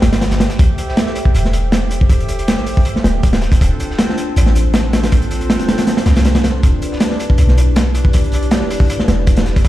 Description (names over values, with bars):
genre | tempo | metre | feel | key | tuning
drum and bass, jungle | 159 BPM | 4/4 | straight | unclear | A4 = 440 Hz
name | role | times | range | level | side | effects
warm 808-style bass | bass | 0.0-9.7 s | D1 to C2 | -15 LUFS | equal | tube saturation
crunchy breakbeat drum kit | drums | 0.0-9.7 s | hi-hat, kick drum, snare drum | -14 LUFS | equal | none
crunchy breakbeat drum kit | drums | 0.0-9.7 s | hi-hat, snare drum | -32 LUFS | left 1 dB | high-pass filter on hats, high-pass filter on snare, high-pass filter on room
warbly tape-like pad | sustained chords | 0.4-9.7 s | C4 to G5 | -23 LUFS | left 1 dB | chorus, built-in reverb
room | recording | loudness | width
studio reverb | played on a big sound system in a bare room, large studio reverb, lossy compression artefacts | -12 LUFS | side -14 dB against mid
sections
0.0-9.7 A section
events
none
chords
0.0 Am7; 2.9 Dm7; 6.6 Em7